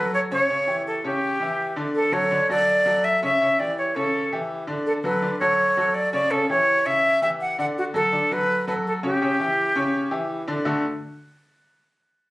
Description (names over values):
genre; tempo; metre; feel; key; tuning
latin; 165 BPM; 4/4; straight; D major; A4 = 441 Hz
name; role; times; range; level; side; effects
breathy silver concert flute; melody; 0.0-10.3 s; F#4 to F#5; -20 LUFS; equal; none
bright baby grand piano; accompaniment; 0.0-10.8 s; C#3 to D5; -26 LUFS; equal; none
room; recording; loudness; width
light reverb; recorded on a phone in the room, club reverb; -20 LUFS; side -19 dB against mid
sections
0.0-10.7 A section; 10.7-12.1 B section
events
none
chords
0.5 C#dim; 2.0 D; 3.4 A7; 4.9 D; 6.3 Em13/C#; 7.8 D; 9.2 C#dim; 10.7 D